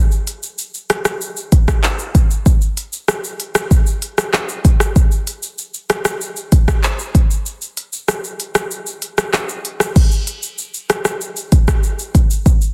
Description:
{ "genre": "dancehall", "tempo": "96 BPM", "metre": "4/4", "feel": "straight", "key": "none", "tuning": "none", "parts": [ { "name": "afro-pop drum kit", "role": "drums", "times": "0.1-12.7 s", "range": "crash cymbal, handclaps, hi-hat, kick drum, rim click, shaker", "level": "-16 LUFS", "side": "equal", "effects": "none" } ], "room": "light reverb", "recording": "dense, heavily limited modern master", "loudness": "-17 LUFS", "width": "mono", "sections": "0.0-10.0 A section; 10.0-12.7 B section", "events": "break 7.5-10.0", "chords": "none", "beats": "0.58 1.21 1.83 | 2.46 3.08 3.71 4.33 | 4.96 5.58 6.21 6.83 | 7.46 8.09 8.71 9.34 | 9.96 10.59 11.21 11.84 | 12.46" }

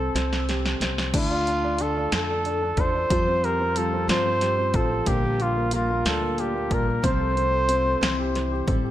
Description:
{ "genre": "six-eight pop ballad", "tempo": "61 BPM (dotted quarters)", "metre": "6/8", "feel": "straight", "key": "F major", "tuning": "A4 = 440 Hz", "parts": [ { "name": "warm flugelhorn", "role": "melody", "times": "0.0-8.6 s", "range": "F4 to C5", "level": "-25 LUFS", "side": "equal", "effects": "ping-pong delay" }, { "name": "warm concert grand piano", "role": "accompaniment", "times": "0.0-8.9 s", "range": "F3 to A4", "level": "-29 LUFS", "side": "right 1 dB", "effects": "none" }, { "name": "upright bass", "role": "bass", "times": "0.0-8.9 s", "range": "A1 to G2", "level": "-28 LUFS", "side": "equal", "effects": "none" }, { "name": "punchy analog drum machine", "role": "drums", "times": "0.2-8.8 s", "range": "crash cymbal, hi-hat, kick drum, snare drum", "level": "-27 LUFS", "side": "equal", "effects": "none" }, { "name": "picked steel-string acoustic guitar", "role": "arpeggios", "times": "1.1-8.9 s", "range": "Bb2 to C5", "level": "-32 LUFS", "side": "left 4 dB", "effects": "lush chorus, ping-pong delay" } ], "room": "moderate plate reverb, RT60 1.8 s, small room ambience", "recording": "bright 1980s-style digital production", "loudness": "-21 LUFS", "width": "side -12 dB against mid", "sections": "0.0-1.1 A section; 1.1-8.9 B section", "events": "drum fill 0.1-1.1", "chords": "0.1 C5; 1.1 Dm; 3.1 Fsus2; 5.1 Bb6; 7.0 F/C; 8.0 C6", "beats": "0.15 | 1.13 2.12 | 3.10 4.09 | 5.07 6.05 | 7.04 8.02" }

